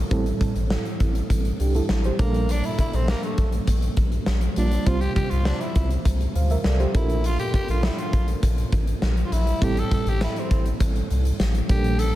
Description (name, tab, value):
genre	1980s-style pop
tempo	101 BPM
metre	4/4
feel	straight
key	unclear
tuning	A4 = 439 Hz
part	FM electric piano with tremolo	accompaniment	0.0-12.2 s	A2 to F5	-28 LUFS	right 3 dB	none
part	round analog bass	bass	0.0-12.1 s	A1 to D2	-23 LUFS	equal	none
part	huge arena drum kit	drums	0.1-12.1 s	hi-hat, kick drum, snare drum, tambourine	-25 LUFS	equal	none
part	raspy tenor saxophone	melody	2.2-12.2 s	A3 to A4	-30 LUFS	equal	analog delay
room	light reverb, studio reverb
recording	none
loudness	-20 LUFS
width	side -15 dB against mid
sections	0.0-12.2 A section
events	tenor saxophone solo 0.0-12.2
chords	0.1 Am7; 2.2 Gmadd9/Bb; 4.9 Csus4; 6.9 Bbmaj7; 9.6 Am7